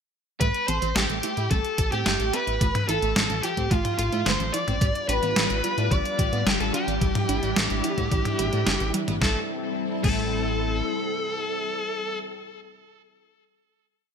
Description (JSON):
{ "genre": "synthwave", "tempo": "109 BPM", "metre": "4/4", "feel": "straight", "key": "A minor", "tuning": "A4 = 435 Hz", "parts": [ { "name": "fuzz lead guitar", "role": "melody", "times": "0.4-12.2 s", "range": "F4 to D5", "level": "-29 LUFS", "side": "left 1 dB", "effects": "distortion, ping-pong delay" }, { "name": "airy dreamy lead", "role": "second line", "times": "0.4-12.2 s", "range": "F4 to D5", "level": "-32 LUFS", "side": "right 1 dB", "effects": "chorus" }, { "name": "warbly dusty pluck", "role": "arpeggios", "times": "0.4-10.2 s", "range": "G3 to A4", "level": "-34 LUFS", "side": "right 3 dB", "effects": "chorus, ping-pong delay" }, { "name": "crunchy overdriven guitar", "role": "riff", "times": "0.4-10.2 s", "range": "E3 to A4", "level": "-35 LUFS", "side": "right 2 dB", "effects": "wide subtle chorus, ping-pong delay" }, { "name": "chorused synth bass", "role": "bass", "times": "0.4-10.8 s", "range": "G1 to A2", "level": "-28 LUFS", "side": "equal", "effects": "none" }, { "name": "detuned 8-bit digital drum machine", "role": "drums", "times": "0.4-10.2 s", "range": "crash cymbal, hi-hat, snare drum, toms", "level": "-27 LUFS", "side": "equal", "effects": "overdrive, gated reverb" }, { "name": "electronic kick drum", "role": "drums", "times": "0.4-10.2 s", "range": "none", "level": "-25 LUFS", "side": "equal", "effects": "overdrive" }, { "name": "string machine, full ensemble", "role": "sustained chords", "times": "4.8-12.2 s", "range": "G3 to B4", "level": "-30 LUFS", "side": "left 1 dB", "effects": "phaser, ensemble chorus, sidechain pumping" } ], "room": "moderate plate reverb, RT60 1.9 s", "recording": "bright 1980s-style digital production", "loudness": "-22 LUFS", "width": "side -7 dB against mid", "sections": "0.4-9.2 verse; 9.2-11.4 final chord", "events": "none", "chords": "0.4 Am7; 2.6 Fmaj7/A; 4.8 G7/A; 7.0 Em7/A; 9.2 Am7" }